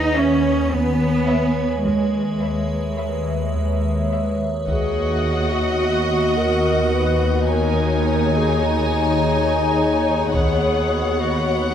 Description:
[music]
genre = cinematic, suspense film score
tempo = 106 BPM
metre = 5/4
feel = straight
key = unclear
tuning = A4 = 441 Hz
[part]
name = icy glass pad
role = sustained chords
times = 0.0-11.7 s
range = B3 to Ab5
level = -25 LUFS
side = right 1 dB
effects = chorus, built-in reverb
[part]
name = warm studio cello section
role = bass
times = 0.0-11.7 s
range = D#2 to Eb4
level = -24 LUFS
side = right 1 dB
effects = none
[part]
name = organ-like drone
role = drone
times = 0.0-11.7 s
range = Eb2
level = -25 LUFS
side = left 2 dB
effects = ensemble chorus, built-in reverb
[part]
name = clear studio violin section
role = melody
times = 0.1-11.7 s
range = Fb5 to Ab5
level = -28 LUFS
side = left 4 dB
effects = none
[part]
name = rich studio violin section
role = second line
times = 0.1-11.7 s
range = Cb5 to D#5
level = -27 LUFS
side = left 4 dB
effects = none
[part]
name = rich studio double bass section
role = bass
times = 0.7-11.7 s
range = Eb2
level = -26 LUFS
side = right 2 dB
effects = none
[part]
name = mellow clarinet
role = second line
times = 4.7-11.7 s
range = Eb4 to B4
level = -24 LUFS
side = left 2 dB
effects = none
[part]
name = warm studio viola section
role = accompaniment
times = 4.7-11.7 s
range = Cb4 to F#4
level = -26 LUFS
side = equal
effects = none
[part]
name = taiko ensemble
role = drums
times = 4.7-5.8, 10.3-11.4 s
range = none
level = -26 LUFS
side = equal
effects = none
[sound]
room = moderate scoring stage reverb, RT60 2.0 s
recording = none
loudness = -17 LUFS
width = side -9 dB against mid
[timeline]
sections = 0.0-4.7 A section; 4.7-11.7 B section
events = none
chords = 0.0 Dbm7/Eb; 4.7 B/D#; 7.5 Dbsus2/Eb; 10.3 Gbsus4/Eb

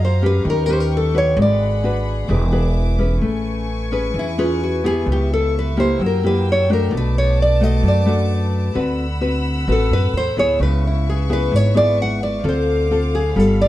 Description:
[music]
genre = bossa nova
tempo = 130 BPM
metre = 4/4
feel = straight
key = A major from 3.2 s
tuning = A4 = 441 Hz
[part]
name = nylon-string guitar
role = melody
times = 0.0-13.7 s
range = E4 to F#5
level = -20 LUFS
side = equal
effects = plate reverb
[part]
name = nylon-string guitar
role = accompaniment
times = 0.0-13.7 s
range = G#2 to B4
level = -20 LUFS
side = left 2 dB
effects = none
[part]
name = dark studio string section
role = sustained chords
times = 0.0-13.7 s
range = G#4 to E6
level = -30 LUFS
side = left 3 dB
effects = none
[part]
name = upright bass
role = bass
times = 0.0-13.7 s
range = E1 to F#2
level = -19 LUFS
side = right 1 dB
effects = none
[sound]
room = light reverb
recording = dark, warm production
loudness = -16 LUFS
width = side -14 dB against mid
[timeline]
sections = 0.0-3.2 A section; 3.2-13.7 A section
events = nylon-string guitar solo 0.0-3.2, 3.2-13.7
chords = 0.4 D#7b13; 1.4 G#m7b5; 2.3 E7; 3.2 Amaj9; 5.1 C#m7b5; 6.0 F#7b9; 6.9 Bm7; 8.8 D13; 10.6 C#m7; 12.4 Dm7

